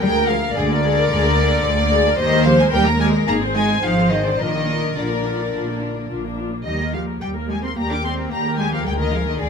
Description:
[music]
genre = quick classical-period movement for string orchestra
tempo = 110 BPM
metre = 4/4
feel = rubato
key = Eb major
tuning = A4 = 440 Hz
[part]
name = warm studio violin section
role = melody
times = 0.0-9.5 s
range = D5 to D6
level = -23 LUFS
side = left 1 dB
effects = none
[part]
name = warm studio violin section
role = second line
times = 0.0-9.5 s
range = G4 to D5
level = -23 LUFS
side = left 3 dB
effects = none
[part]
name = warm studio viola section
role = accompaniment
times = 0.0-9.5 s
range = G3 to C5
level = -25 LUFS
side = left 2 dB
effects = none
[part]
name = dark studio double bass section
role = bass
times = 0.0-9.5 s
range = Ab1 to Eb2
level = -22 LUFS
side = right 2 dB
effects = none
[part]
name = warm studio cello section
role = bass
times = 0.0-9.5 s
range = D3 to D4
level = -24 LUFS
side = right 1 dB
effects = none
[sound]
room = light reverb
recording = close, detailed microphones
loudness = -17 LUFS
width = side -6 dB against mid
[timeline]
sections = 0.0-9.5 A section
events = none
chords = 0.0 Bb7/D; 2.2 Eb; 3.3 Ab; 4.4 Bb; 6.7 Eb; 8.9 Bb7/D

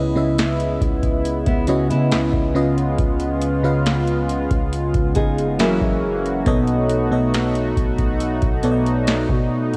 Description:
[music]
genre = contemporary R&B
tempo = 69 BPM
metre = 4/4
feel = straight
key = C# minor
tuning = A4 = 440 Hz
[part]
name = FM electric piano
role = accompaniment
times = 0.0-9.8 s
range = B2 to E#5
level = -23 LUFS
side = equal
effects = chorus, cassette tape
[part]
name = chorused pulse-width pad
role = sustained chords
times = 0.0-9.8 s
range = C#3 to F#4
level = -26 LUFS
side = equal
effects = sidechain pumping, cassette tape
[part]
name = long sustained 808-style bass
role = bass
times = 0.0-9.8 s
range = F#1 to C#3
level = -29 LUFS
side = equal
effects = none
[part]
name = booming analog drum machine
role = drums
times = 0.4-9.8 s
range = hi-hat, kick drum, snare drum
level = -24 LUFS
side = equal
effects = cassette tape
[part]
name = nylon-string guitar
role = arpeggios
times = 1.5-6.4 s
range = G#3 to G#4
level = -27 LUFS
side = equal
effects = cassette tape
[sound]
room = light reverb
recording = home recording on cassette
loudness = -19 LUFS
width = mono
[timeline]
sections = 0.0-9.8 A section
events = none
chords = 0.0 C#m7; 2.6 C#7; 5.6 F#7; 6.5 B7

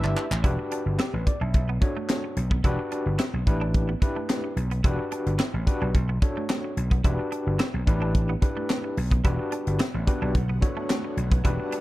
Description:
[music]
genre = early-eighties boogie funk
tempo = 109 BPM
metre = 4/4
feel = straight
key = E dorian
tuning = A4 = 439 Hz
[part]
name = overdriven tine electric piano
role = accompaniment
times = 0.0-11.8 s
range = D4 to E5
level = -31 LUFS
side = left 2 dB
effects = medium tremolo
[part]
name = lush unison pad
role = sustained chords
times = 0.0-0.4, 9.5-11.8 s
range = D3 to F#5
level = -40 LUFS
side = left 1 dB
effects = chorus, phaser
[part]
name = clean electric guitar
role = riff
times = 0.0-11.8 s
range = A3 to E4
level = -38 LUFS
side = right 6 dB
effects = analog chorus
[part]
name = vintage slap bass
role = bass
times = 0.0-11.6 s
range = E1 to B1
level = -26 LUFS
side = equal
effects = none
[part]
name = tight funk drum kit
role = drums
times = 0.0-11.8 s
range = handclaps, hi-hat, kick drum, snare drum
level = -25 LUFS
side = equal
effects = none
[sound]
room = studio ambience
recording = dark, warm production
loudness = -23 LUFS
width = side -17 dB against mid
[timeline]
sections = 0.4-11.8 A section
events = drum fill 0.0-0.4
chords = 0.4 Em9; 1.5 Bm9; 2.6 Em9; 3.5 A7sus4; 4.8 Em9; 5.9 Bm9; 7.0 Em9; 7.9 A7sus4; 9.2 Em9; 10.3 Bm9

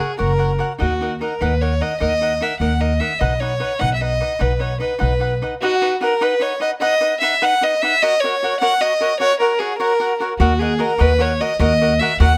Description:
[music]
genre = mexican folk, mariachi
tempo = 100 BPM (dotted quarters)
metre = 6/8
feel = straight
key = B major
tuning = A4 = 440 Hz
[part]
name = warm violin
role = melody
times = 0.0-12.4 s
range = F#4 to F#5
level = -20 LUFS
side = equal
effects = none
[part]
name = cavaquinho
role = accompaniment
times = 0.0-12.3 s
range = D#4 to F#5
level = -26 LUFS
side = equal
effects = none
[part]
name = upright bass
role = bass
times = 0.2-5.4, 10.4-12.4 s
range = F#1 to D#2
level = -21 LUFS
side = equal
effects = none
[sound]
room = little or no reverb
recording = close, detailed microphones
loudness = -18 LUFS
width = mono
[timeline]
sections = 0.0-5.6 A section; 5.6-12.4 A section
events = none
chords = 0.0 F#; 0.8 D#m; 3.2 B; 8.0 F#; 10.4 D#m

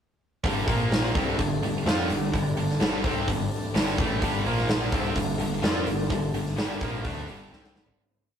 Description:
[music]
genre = hard rock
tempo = 127 BPM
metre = 4/4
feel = straight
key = G minor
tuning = A4 = 440 Hz
[part]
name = tonewheel organ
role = sustained chords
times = 0.4-8.0 s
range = G3 to C5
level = -35 LUFS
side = left 1 dB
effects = slow rotary speaker
[part]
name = tight distorted guitar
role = riff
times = 0.4-8.0 s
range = G2 to F4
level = -32 LUFS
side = left 5 dB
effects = distortion
[part]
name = tight distorted guitar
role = riff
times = 0.4-8.0 s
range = G2 to F4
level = -31 LUFS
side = right 4 dB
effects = distortion
[part]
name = growling picked electric bass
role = bass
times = 0.4-8.0 s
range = G1 to F2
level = -32 LUFS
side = equal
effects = overdrive
[part]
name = huge arena drum kit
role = drums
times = 0.4-8.0 s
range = hi-hat, kick drum, snare drum, toms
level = -26 LUFS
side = equal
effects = none
[sound]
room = light reverb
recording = rough rehearsal-room recording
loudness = -23 LUFS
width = side -8 dB against mid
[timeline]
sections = 0.4-8.0 riff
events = fade-out 6.1-8.0; drum fill 7.5-8.0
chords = 0.4 G5; 0.7 Bb5; 1.2 G5; 4.5 Bb5; 4.9 Gm

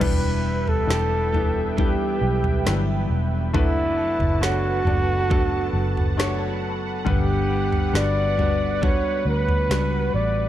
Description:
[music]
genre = pop ballad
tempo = 68 BPM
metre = 4/4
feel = straight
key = B minor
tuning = A4 = 440 Hz
[part]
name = breathy flugelhorn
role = melody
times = 0.0-10.5 s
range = E4 to D5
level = -25 LUFS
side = right 1 dB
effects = tape echo
[part]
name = warm baby grand piano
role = accompaniment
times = 0.0-10.5 s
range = G2 to F#5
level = -28 LUFS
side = left 5 dB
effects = none
[part]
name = lush unison pad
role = sustained chords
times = 0.0-10.5 s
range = B4 to A5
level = -33 LUFS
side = equal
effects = chorus, phaser
[part]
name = direct-recorded clean electric guitar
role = arpeggios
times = 0.0-10.5 s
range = E3 to A4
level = -32 LUFS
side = right 7 dB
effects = tape echo
[part]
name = vintage muted fingered electric bass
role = bass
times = 0.0-10.5 s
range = E1 to D2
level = -24 LUFS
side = equal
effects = none
[part]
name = smooth R&B drum kit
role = drums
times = 0.0-9.9 s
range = crash cymbal, kick drum, snare drum, toms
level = -25 LUFS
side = equal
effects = overdrive
[sound]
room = light reverb, digital ambience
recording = dark, warm production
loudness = -19 LUFS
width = side -12 dB against mid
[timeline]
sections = 0.0-10.5 A section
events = none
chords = 0.0 Em7; 3.5 Bm7/F#; 7.1 Gmaj7

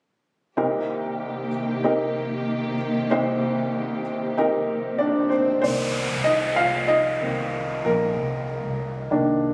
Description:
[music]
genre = pop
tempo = 95 BPM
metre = 4/4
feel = straight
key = C minor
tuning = A4 = 440 Hz
[part]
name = clear upright piano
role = accompaniment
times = 0.6-9.5 s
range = C2 to F5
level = -25 LUFS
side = equal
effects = none
[part]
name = warm studio string section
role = sustained chords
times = 0.6-5.6 s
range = C3 to G4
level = -31 LUFS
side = equal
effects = none
[part]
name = swell and downlifter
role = sound effects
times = 4.2-9.5 s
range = none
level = -33 LUFS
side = equal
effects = none
[part]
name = vintage muted fingered electric bass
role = bass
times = 5.6-9.5 s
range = Bb1 to C2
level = -34 LUFS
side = equal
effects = none
[sound]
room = light reverb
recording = recorded on a phone in the room, club reverb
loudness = -24 LUFS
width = mono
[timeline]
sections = 0.6-5.6 A section; 5.6-9.5 B section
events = swell 4.2-5.6; upright piano solo 5.6-9.5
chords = 0.6 Cm7

